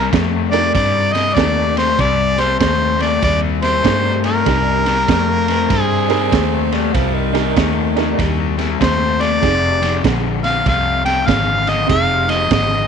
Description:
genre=electric blues shuffle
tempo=97 BPM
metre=4/4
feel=swing 64% on 8ths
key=C minor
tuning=A4 = 440 Hz
part: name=clear harmonica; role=melody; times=0.0-12.9 s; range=Bb4 to G5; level=-17 LUFS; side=equal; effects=overdrive
part: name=raw garage guitar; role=riff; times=0.0-12.9 s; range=F2 to A3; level=-20 LUFS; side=left 16 dB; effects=overdrive
part: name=vintage muted fingered electric bass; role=bass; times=0.0-12.9 s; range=F1 to G2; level=-21 LUFS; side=equal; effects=none
part: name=crunchy breakbeat drum kit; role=drums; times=0.1-12.7 s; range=kick drum, ride cymbal, snare drum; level=-21 LUFS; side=right 6 dB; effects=none
part: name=honky-tonk upright piano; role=accompaniment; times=0.5-12.8 s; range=C4 to Bb4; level=-23 LUFS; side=right 15 dB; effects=none
part: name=growling tenor saxophone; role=second line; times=5.1-8.6 s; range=Eb3 to C4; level=-24 LUFS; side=right 14 dB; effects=none
room=studio reverb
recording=1960s-style stereo with parts hard left and right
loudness=-13 LUFS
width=side -6 dB against mid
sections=0.0-12.9 A section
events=none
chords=0.0 Cm9; 9.4 Fm9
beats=0.12 0.74 1.36 | 1.99 2.61 3.23 3.85 | 4.47 5.09 5.71 6.33 | 6.95 7.56 8.18 8.80 | 9.42 10.04 10.66 11.27 | 11.89 12.51

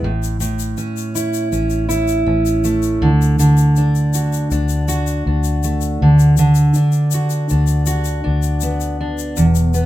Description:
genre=acoustic pop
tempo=80 BPM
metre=4/4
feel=straight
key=unclear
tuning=A4 = 440 Hz
part: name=fingerpicked steel-string acoustic guitar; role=accompaniment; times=0.0-9.9 s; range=E2 to F#4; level=-15 LUFS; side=right 1 dB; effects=none
part: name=vintage muted fingered electric bass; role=bass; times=0.0-9.9 s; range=E1 to D2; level=-19 LUFS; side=left 1 dB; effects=none
part: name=tube shaker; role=percussion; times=0.2-9.9 s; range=none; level=-28 LUFS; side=left 11 dB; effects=none
room=light reverb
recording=minimal, uncompressed stereo recording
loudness=-14 LUFS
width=side -14 dB against mid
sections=0.0-9.9 A section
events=none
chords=0.0 A; 3.0 D; 6.0 Bm/D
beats=| 0.40 1.15 1.90 2.65 | 3.39 4.14 4.89 5.63 | 6.38 7.13 7.87 8.62 | 9.37

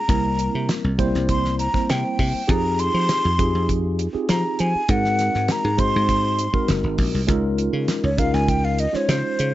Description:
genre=electric jazz fusion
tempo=100 BPM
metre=4/4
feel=straight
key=unclear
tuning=A4 = 441 Hz
part: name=breathy mellow silver concert flute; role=melody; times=0.0-9.5 s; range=C5 to C6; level=-23 LUFS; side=equal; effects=none
part: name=tine electric piano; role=accompaniment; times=0.1-9.5 s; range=G3 to C5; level=-24 LUFS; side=right 1 dB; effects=medium stereo tremolo
part: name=dry thumbed slap bass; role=bass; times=0.1-9.5 s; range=Gb1 to F3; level=-23 LUFS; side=equal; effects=none
part: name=damped 70s drum kit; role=drums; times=0.1-9.5 s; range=hi-hat, kick drum, snare drum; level=-24 LUFS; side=equal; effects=none
room=light reverb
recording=nothing above 7.8 kHz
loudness=-18 LUFS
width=side -14 dB against mid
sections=0.0-9.5 A section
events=flute solo 0.0-9.5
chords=0.1 C7; 2.5 Fm9; 4.9 Ab7; 7.3 Db69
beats=| 0.09 0.69 1.29 1.89 | 2.49 3.09 3.69 4.29 | 4.89 5.49 6.09 6.69 | 7.29 7.89 8.49 9.09

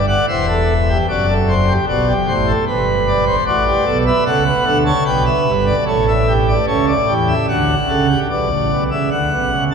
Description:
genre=classical, baroque-style 3-part fugue for pipe organ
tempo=75 BPM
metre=3/4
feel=straight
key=unclear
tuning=A4 = 441 Hz
part: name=pipe organ, principal chorus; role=solo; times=0.0-9.7 s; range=E1 to A5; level=-14 LUFS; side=equal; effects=none
room=wet cathedral reverb, RT60 6.3 s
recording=minimal, uncompressed stereo recording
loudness=-14 LUFS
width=side -6 dB against mid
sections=0.0-8.3 A section; 8.3-9.7 B section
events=none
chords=0.3 C/E; 1.1 D7/F#; 2.7 G; 3.5 D/A; 5.1 G/B; 5.9 A7; 7.5 D; 8.3 Bm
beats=0.29 | 1.09 1.88 2.67 | 3.47 4.27 5.07 | 5.87 6.68 7.49 | 8.31 9.13

